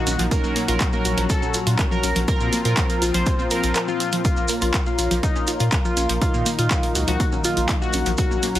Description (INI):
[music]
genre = melodic techno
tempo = 122 BPM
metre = 4/4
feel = straight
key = unclear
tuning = A4 = 440 Hz
[part]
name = resonant sweep polysynth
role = melody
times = 0.0-8.6 s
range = Eb4 to C5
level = -26 LUFS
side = equal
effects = chorus, sidechain pumping, digital delay
[part]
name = dark analog pad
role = sustained chords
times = 0.0-8.6 s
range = Gb3 to Bb5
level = -33 LUFS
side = equal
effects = chorus, sidechain pumping
[part]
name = wide unison pluck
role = arpeggios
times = 0.0-8.6 s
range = F3 to Bb4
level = -28 LUFS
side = equal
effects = sidechain pumping, digital delay
[part]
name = brassy analog pad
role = stabs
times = 0.0-8.6 s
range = Eb3 to Bb4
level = -28 LUFS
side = left 4 dB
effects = chorus, sidechain pumping, digital delay
[part]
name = analog drone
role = drone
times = 0.0-8.6 s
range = Bb2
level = -36 LUFS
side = equal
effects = none
[part]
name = warbly tape-like pad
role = texture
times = 0.0-8.6 s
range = Eb4 to C6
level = -34 LUFS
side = equal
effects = chorus, built-in reverb, sidechain pumping
[part]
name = round analog bass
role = bass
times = 0.1-8.6 s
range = Bb1 to Bb2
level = -24 LUFS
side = equal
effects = sidechain pumping
[part]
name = punchy analog drum machine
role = drums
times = 0.1-8.6 s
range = handclaps, hi-hat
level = -27 LUFS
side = right 1 dB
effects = none
[part]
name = maracas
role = percussion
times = 0.1-8.6 s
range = none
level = -31 LUFS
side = right 2 dB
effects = none
[part]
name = electronic kick drum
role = drums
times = 0.3-8.3 s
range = none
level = -23 LUFS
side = equal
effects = none
[sound]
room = little or no reverb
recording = heavily compressed radio sound, multiband compression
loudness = -18 LUFS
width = side -13 dB against mid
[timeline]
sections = 0.0-8.6 A section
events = none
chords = 0.3 Gb/Bb; 2.3 Fsus4/Bb; 4.2 Bbm; 6.2 Ebm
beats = | 0.31 0.81 1.30 1.79 | 2.28 2.77 3.27 3.76 | 4.25 4.74 5.23 5.72 | 6.21 6.71 7.20 7.69 | 8.18